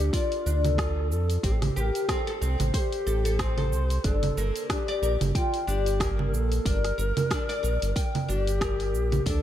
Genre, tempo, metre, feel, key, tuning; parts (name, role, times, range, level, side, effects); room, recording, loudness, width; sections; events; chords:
organic downtempo; 92 BPM; 4/4; swing 56% on 16ths; A4 = 440 Hz
mellow low Native American-style wooden flute; melody; 0.0-9.4 s; F4 to C5; -32 LUFS; left 1 dB; ping-pong delay, slapback echo
oud; arpeggios; 0.0-9.4 s; Bb3 to G5; -31 LUFS; left 3 dB; digital delay
round analog bass; bass; 0.0-9.4 s; G1 to F2; -26 LUFS; equal
deep house drum kit; drums; 0.0-9.4 s; cabasa, congas, hi-hat, rim click; -32 LUFS; right 3 dB
electronic kick drum; drums; 0.1-9.4 s; -29 LUFS; equal
light reverb, digital ambience; -24 LUFS; side -11 dB against mid
0.0-9.4 A section
0.0 Dm; 1.4 Am7; 4.0 Gm